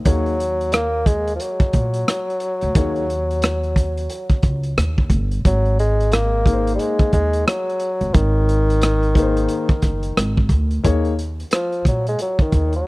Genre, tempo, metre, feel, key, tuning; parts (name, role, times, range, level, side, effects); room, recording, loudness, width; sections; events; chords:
hip hop, jazz-hop; 89 BPM; 4/4; swing 61% on 16ths; A4 = 440 Hz
mellow bassoon; melody; 0.1-12.9 s; Eb3 to Bb3; -22 LUFS; equal; tape echo
dark concert grand piano; accompaniment; 0.1-11.1 s; Bb3 to Db5; -23 LUFS; left 5 dB
upright bass; bass; 0.1-12.8 s; Gb1 to Bb2; -20 LUFS; equal
crunchy breakbeat drum kit; drums; 0.1-12.9 s; hi-hat, kick drum, rim click; -18 LUFS; equal
small room reverb; dry, close 1970s-style studio recording; -16 LUFS; side -21 dB against mid
0.0-5.4 A section; 5.4-12.9 A section
0.1 Ebm7; 5.4 Ab; 10.8 Ebm7